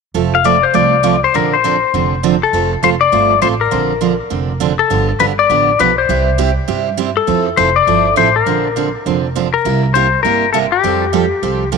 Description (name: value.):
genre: country, western swing.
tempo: 202 BPM.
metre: 4/4.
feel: swing 62% on 8ths.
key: F major.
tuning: A4 = 441 Hz.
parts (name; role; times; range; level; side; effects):
picked steel-string acoustic guitar; accompaniment; 0.1-11.8 s; C3 to A4; -17 LUFS; right 14 dB; none.
upright bass; bass; 0.1-11.8 s; F1 to G2; -20 LUFS; right 2 dB; none.
clean lap steel guitar; melody; 0.3-11.7 s; G4 to F5; -14 LUFS; left 9 dB; tape echo.
room: moderate plate reverb, RT60 2.8 s.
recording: 1960s-style stereo with parts hard left and right.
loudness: -11 LUFS.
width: side -5 dB against mid.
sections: 0.2-2.5 A section; 2.5-11.8 B section.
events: none.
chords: 0.2 F; 1.3 Bbadd9; 2.5 F; 3.7 Bbadd9; 4.9 G7; 6.1 C; 7.3 Fmaj7; 8.5 Bbadd9; 9.7 C7; 10.8 Fadd9.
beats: | 0.15 0.45 0.75 1.05 | 1.34 1.64 1.94 2.23 | 2.53 2.83 3.13 3.42 | 3.72 4.02 4.31 4.61 | 4.91 5.20 5.50 5.80 | 6.09 6.39 6.69 6.98 | 7.28 7.58 7.87 8.17 | 8.47 8.76 9.06 9.36 | 9.65 9.95 10.25 10.54 | 10.84 11.13 11.43 11.73.